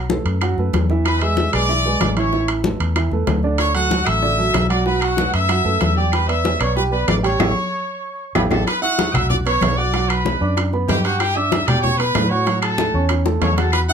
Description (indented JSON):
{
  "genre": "latin, salsa",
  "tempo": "189 BPM",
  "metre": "4/4",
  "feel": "straight",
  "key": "unclear",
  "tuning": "A4 = 440 Hz",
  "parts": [
    { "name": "dark grand piano", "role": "accompaniment", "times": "0.0-13.9 s", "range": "D3 to G6", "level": "-23 LUFS", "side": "right 6 dB", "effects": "none" },
    { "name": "vintage muted fingered electric bass", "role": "bass", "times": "0.0-13.9 s", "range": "A1 to B2", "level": "-21 LUFS", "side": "left 1 dB", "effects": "none" },
    { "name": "bongos", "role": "percussion", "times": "0.1-13.9 s", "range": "none", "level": "-27 LUFS", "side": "left 7 dB", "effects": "none" },
    { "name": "congas", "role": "percussion", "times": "0.1-13.9 s", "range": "none", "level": "-25 LUFS", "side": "left 3 dB", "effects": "none" },
    { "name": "timbales", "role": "percussion", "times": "0.3-13.9 s", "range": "none", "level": "-26 LUFS", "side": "right 7 dB", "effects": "none" },
    { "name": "claves", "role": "percussion", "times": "0.4-13.9 s", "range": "none", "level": "-30 LUFS", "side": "left 6 dB", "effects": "none" },
    { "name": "brilliant trumpet section", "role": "melody", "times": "1.1-13.9 s", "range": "F#4 to E6", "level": "-21 LUFS", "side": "equal", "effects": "none" }
  ],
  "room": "light reverb",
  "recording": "none",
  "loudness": "-16 LUFS",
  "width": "side -7 dB against mid",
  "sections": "0.0-8.7 A section; 8.7-13.9 B section",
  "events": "band accent 7.4-8.7; drum fill 7.9-8.7, 13.3-13.7",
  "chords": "0.0 B5; 1.1 E7; 2.3 Aadd9; 3.6 Dmaj7; 4.9 Bm7; 6.1 Em7; 7.4 A7; 8.7 Esus2; 9.9 Bm; 11.2 Gmaj7; 12.5 A6",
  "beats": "0.10 0.42 0.73 | 1.05 1.37 1.69 2.00 | 2.32 2.64 2.96 3.27 | 3.59 3.91 4.23 4.54 | 4.86 5.18 5.50 5.81 | 6.13 6.45 6.76 7.08 | 7.40 7.71 8.03 8.35 | 8.67 8.98 9.30 9.62 | 9.93 10.25 10.57 10.88 | 11.20 11.52 11.84 12.15 | 12.47 12.79 13.10 13.42 | 13.74"
}